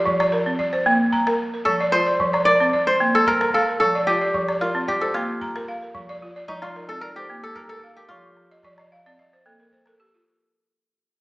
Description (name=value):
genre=west african traditional, West African string and xylophone music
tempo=112 BPM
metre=4/4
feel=straight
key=F mixolydian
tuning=A4 = 440 Hz
part: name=kora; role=melody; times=0.0-9.7 s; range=Eb4 to D5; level=-21 LUFS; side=equal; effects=none
part: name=balafon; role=arpeggios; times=0.0-10.4 s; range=F3 to Bb5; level=-22 LUFS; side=equal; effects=none
part: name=calabash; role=percussion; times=0.1-10.0 s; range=none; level=-34 LUFS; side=left 1 dB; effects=none
room=wet recital hall reverb, RT60 1.3 s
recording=recorded in a church or concert hall, small speaker sound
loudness=-18 LUFS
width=side -21 dB against mid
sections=0.0-10.3 A section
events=fade-out 0.0-10.3; balafon fill 8.5-10.3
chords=0.0 F5; 0.6 Bb; 1.7 F5; 2.7 Bb; 3.8 F5; 4.9 Bb; 6.0 F5; 7.0 Bb; 8.1 F5; 9.2 N.C.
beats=0.06 0.59 1.12 | 1.66 2.19 2.73 3.26 | 3.80 4.34 4.88 5.41 | 5.95 6.49 7.03 7.57 | 8.10 8.64 9.18 9.72